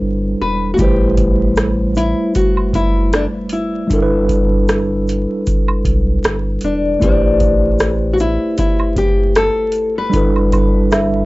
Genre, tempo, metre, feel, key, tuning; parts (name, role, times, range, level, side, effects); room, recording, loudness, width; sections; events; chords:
lo-fi hip hop; 77 BPM; 4/4; swing 58% on 16ths; A dorian; A4 = 443 Hz
mellow tine electric piano; accompaniment; 0.0-11.3 s; G3 to C5; -18 LUFS; right 1 dB; medium stereo tremolo, cassette tape, low-pass filter
soft dub sub bass; bass; 0.0-11.3 s; E1 to B1; -20 LUFS; equal; tube saturation
nylon-string guitar; melody; 0.4-10.7 s; D4 to B4; -18 LUFS; left 2 dB; low-pass filter
booming analog drum machine; drums; 0.8-11.1 s; hi-hat, kick drum, rim click; -17 LUFS; equal; vintage 12-bit sampler grit
egg shaker and woodblock; percussion; 0.8-11.1 s; -30 LUFS; right 3 dB
worn celesta; second line; 10.9-11.3 s; E5; -18 LUFS; right 2 dB; low-pass filter
light reverb; dry, gritty hardware recording, vinyl crackle, nothing above 7.7 kHz; -13 LUFS; side -20 dB against mid
0.0-11.3 A section
0.0 G6; 0.8 Am7; 3.9 G6; 7.0 Am7; 10.1 G6